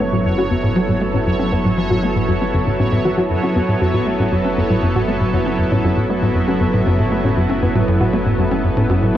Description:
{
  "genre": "ambient, sequencer-driven space music",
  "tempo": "118 BPM",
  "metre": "4/4",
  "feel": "straight",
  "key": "F# minor",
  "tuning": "A4 = 440 Hz",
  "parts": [
    { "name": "lush unison pad", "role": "sustained chords", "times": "0.0-9.2 s", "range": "F#3 to A4", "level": "-20 LUFS", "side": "equal", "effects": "chorus" },
    { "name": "soft round pluck", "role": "arpeggios", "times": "0.0-9.2 s", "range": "C#3 to F#4", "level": "-23 LUFS", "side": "left 1 dB", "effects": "chorus, auto-pan, tape echo" },
    { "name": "tight sequencer bass", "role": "riff", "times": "0.0-9.2 s", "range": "F#2 to C#4", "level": "-18 LUFS", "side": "equal", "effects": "wide subtle chorus, tape echo" },
    { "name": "analog drone", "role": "bass", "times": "0.0-9.2 s", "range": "F#1", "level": "-28 LUFS", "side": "equal", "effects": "chorus, phaser" },
    { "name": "bubbling stepped-filter texture", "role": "texture", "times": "0.0-9.2 s", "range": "C#5", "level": "-27 LUFS", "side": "right 4 dB", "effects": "chorus, built-in reverb" }
  ],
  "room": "wet huge ambient reverb, RT60 7.8 s",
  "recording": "worn, warbling old tape, cassette tape, warbly pitch drift",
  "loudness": "-15 LUFS",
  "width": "side -12 dB against mid",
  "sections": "0.0-9.2 A section",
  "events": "none",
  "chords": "0.0 F#m7"
}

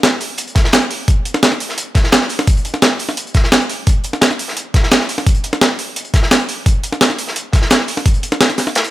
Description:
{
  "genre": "drum and bass",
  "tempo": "172 BPM",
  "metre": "4/4",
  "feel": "straight",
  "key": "none",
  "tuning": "none",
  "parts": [
    { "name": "breakbeat sampler-style drum kit", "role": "drums", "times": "0.0-8.9 s", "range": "hi-hat, snare drum", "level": "-15 LUFS", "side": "equal", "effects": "none" },
    { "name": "crunchy breakbeat drum kit", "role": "drums", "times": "0.0-8.9 s", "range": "hi-hat, snare drum", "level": "-20 LUFS", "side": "equal", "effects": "high-pass filter on hats, high-pass filter on snare, high-pass filter on room" },
    { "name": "electronic kick drum", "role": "drums", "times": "0.6-8.1 s", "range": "none", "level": "-13 LUFS", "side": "equal", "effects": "none" }
  ],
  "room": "little or no reverb",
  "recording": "none",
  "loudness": "-12 LUFS",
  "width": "side -16 dB against mid",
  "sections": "0.0-8.9 A section",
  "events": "none",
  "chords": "none"
}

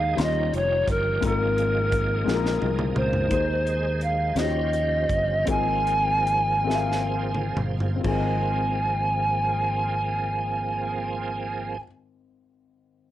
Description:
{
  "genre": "slow gospel",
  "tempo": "41-58 BPM (dotted quarters)",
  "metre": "6/8",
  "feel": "straight",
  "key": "Ab major",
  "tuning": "A4 = 439 Hz",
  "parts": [
    { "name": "bright reedy polished pan flute", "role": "melody", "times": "0.0-11.8 s", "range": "Bb4 to Ab5", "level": "-25 LUFS", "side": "right 1 dB", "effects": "cassette tape" },
    { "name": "dark baby grand piano", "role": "accompaniment", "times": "0.0-13.1 s", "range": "Ab1 to C6", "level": "-30 LUFS", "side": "left 8 dB", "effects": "cassette tape" },
    { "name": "bright tonewheel organ", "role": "sustained chords", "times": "0.0-11.8 s", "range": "Eb3 to C5", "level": "-33 LUFS", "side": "right 6 dB", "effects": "fast rotary speaker, overdrive, chorus vibrato, cassette tape" },
    { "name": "fingered electric bass", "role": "bass", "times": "0.0-11.8 s", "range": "F1 to Eb2", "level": "-28 LUFS", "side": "equal", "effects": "none" },
    { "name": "crisp fusion drum kit", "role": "drums", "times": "0.2-8.3 s", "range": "crash cymbal, hi-hat, kick drum, snare drum, toms", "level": "-30 LUFS", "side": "equal", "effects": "cassette tape" }
  ],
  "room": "light reverb",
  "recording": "home recording on cassette",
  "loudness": "-22 LUFS",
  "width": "side -13 dB against mid",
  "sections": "0.0-3.3 A section; 3.3-8.0 B section; 8.0-13.1 C section",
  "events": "drum fill 2.3-3.3, 6.7-8.0; slowing down 3.3-8.0",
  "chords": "0.2 Eb13; 1.2 Ab69; 3.3 Ab/Eb; 4.4 Eb13; 5.5 Ab69"
}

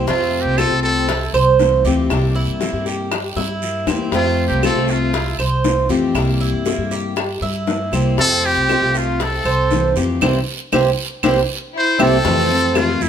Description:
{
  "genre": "latin, Cuban son and guajira",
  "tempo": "118 BPM",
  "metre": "4/4",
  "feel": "straight",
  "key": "F major",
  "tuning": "A4 = 437 Hz",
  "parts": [
    { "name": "picked steel-string acoustic guitar", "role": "accompaniment", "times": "0.0-13.1 s", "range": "C3 to G4", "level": "-22 LUFS", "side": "left 5 dB", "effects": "none" },
    { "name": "Cuban tres", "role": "arpeggios", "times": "0.0-13.1 s", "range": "C4 to C5", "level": "-21 LUFS", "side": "right 6 dB", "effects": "none" },
    { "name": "upright bass", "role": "bass", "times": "0.0-13.1 s", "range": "C2 to G2", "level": "-21 LUFS", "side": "equal", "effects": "none" },
    { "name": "trumpet with metal mute", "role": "melody", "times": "0.1-13.1 s", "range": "E4 to C5", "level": "-19 LUFS", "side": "equal", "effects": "none" },
    { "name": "dark studio violin section", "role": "second line", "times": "0.1-13.1 s", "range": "A3 to E4", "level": "-26 LUFS", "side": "left 1 dB", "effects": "none" },
    { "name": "bongos", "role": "percussion", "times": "0.1-13.1 s", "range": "none", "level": "-24 LUFS", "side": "left 5 dB", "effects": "none" },
    { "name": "guiro", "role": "percussion", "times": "0.1-13.1 s", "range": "none", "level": "-32 LUFS", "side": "right 6 dB", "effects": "none" },
    { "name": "claves", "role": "percussion", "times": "0.6-13.0 s", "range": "none", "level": "-27 LUFS", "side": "right 3 dB", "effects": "none" }
  ],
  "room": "moderate stone room reverb, RT60 1.0 s",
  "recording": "band playing live in one room",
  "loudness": "-15 LUFS",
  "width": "side -8 dB against mid",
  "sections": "0.0-12.2 A section",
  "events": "drum fill 3.4-4.1, 11.5-12.2; band accent 10.2-12.2",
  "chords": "0.1 Fmaj7; 2.1 C7; 4.1 Fmaj7; 6.2 C7; 8.2 Fmaj7; 10.2 C7; 12.2 Fmaj7"
}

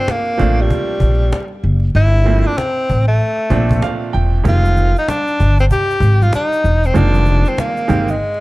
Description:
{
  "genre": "hip hop, jazz-hop",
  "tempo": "96 BPM",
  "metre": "4/4",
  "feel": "swing 62% on 16ths",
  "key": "unclear",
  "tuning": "A4 = 440 Hz",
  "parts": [
    { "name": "breathy tenor saxophone", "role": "melody", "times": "0.0-8.4 s", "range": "G3 to G4", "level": "-18 LUFS", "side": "equal", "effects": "plate reverb" },
    { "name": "bright upright piano", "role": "accompaniment", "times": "0.0-8.1 s", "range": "Bb2 to G5", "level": "-20 LUFS", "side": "right 4 dB", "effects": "plate reverb" },
    { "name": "cajon", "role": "drums", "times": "0.1-8.1 s", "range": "none", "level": "-23 LUFS", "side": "equal", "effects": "none" },
    { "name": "upright bass", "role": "bass", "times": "0.4-8.2 s", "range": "E1 to Bb1", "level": "-14 LUFS", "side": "equal", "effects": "none" },
    { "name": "tube shaker and congas", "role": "percussion", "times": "4.5-8.2 s", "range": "none", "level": "-31 LUFS", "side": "left 2 dB", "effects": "none" }
  ],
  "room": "little or no reverb",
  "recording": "dark, warm production, vinyl crackle",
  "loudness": "-12 LUFS",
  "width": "side -19 dB against mid",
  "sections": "0.0-8.4 A section",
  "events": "upright piano fill 3.5-4.4; break 8.2",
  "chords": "0.0 Gm11; 4.4 Fm11"
}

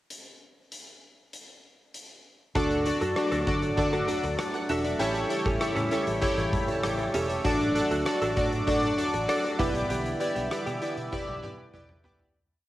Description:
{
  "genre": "1980s-style pop",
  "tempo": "98 BPM",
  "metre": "4/4",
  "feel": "straight",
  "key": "D major",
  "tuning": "A4 = 441 Hz",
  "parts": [
    { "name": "huge arena drum kit", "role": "drums", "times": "0.1-12.3 s", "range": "hi-hat, kick drum, rim click, toms", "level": "-34 LUFS", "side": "equal", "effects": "none" },
    { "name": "chorused retro synth keys", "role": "accompaniment", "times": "2.5-12.4 s", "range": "D4 to B5", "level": "-27 LUFS", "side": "equal", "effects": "shimmer reverb" },
    { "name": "sweeping resonant pad", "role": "sustained chords", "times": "2.6-12.3 s", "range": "C#3 to E4", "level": "-36 LUFS", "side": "equal", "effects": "chorus" },
    { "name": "direct-recorded clean electric guitar", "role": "riff", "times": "2.6-12.3 s", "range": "B3 to A4", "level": "-33 LUFS", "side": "right 2 dB", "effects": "analog chorus, tape echo, shimmer reverb" },
    { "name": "vintage muted fingered electric bass", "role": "bass", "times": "2.6-12.3 s", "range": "E1 to D3", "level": "-34 LUFS", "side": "equal", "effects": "none" }
  ],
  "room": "wet spring reverb, RT60 2.0 s",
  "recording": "home recording on cassette",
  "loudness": "-25 LUFS",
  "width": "side -15 dB against mid",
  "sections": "0.1-2.6 pickup bar; 2.6-12.3 verse",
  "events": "fade-out 9.9-12.3; drum fill 11.1-12.3",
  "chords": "0.1 N.C.; 2.6 D; 5.0 A7; 7.5 D/A; 9.6 G6/B"
}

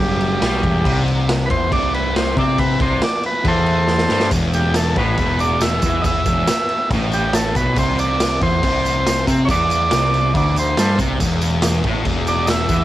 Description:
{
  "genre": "garage rock duo or trio",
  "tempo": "139 BPM",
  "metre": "4/4",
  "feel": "straight",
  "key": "unclear",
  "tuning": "A4 = 443 Hz",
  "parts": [
    { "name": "overdriven combo organ", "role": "melody", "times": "0.0-12.8 s", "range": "G3 to E5", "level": "-20 LUFS", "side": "right 1 dB", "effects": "cassette tape" },
    { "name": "fuzz guitar", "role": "riff", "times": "0.0-12.8 s", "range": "E2 to C4", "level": "-22 LUFS", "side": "left 1 dB", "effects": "distortion, cassette tape" },
    { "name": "growling picked electric bass", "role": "bass", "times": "0.0-12.8 s", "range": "E1 to C3", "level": "-21 LUFS", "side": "equal", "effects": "overdrive" },
    { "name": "raw garage drum kit", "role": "drums", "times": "0.2-12.8 s", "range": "crash cymbal, kick drum, snare drum", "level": "-21 LUFS", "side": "equal", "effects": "cassette tape" },
    { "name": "tambourine", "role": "percussion", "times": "4.3-12.8 s", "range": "none", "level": "-31 LUFS", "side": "right 4 dB", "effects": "none" }
  ],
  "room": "little or no reverb",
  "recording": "home recording on cassette",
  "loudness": "-15 LUFS",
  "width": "side -14 dB against mid",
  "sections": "0.0-12.8 A section",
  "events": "transistor combo organ solo 0.0-12.8; drum fill 3.9-4.3",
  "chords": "0.0 Em; 0.9 C5; 4.3 E5; 7.8 C5; 11.2 N.C."
}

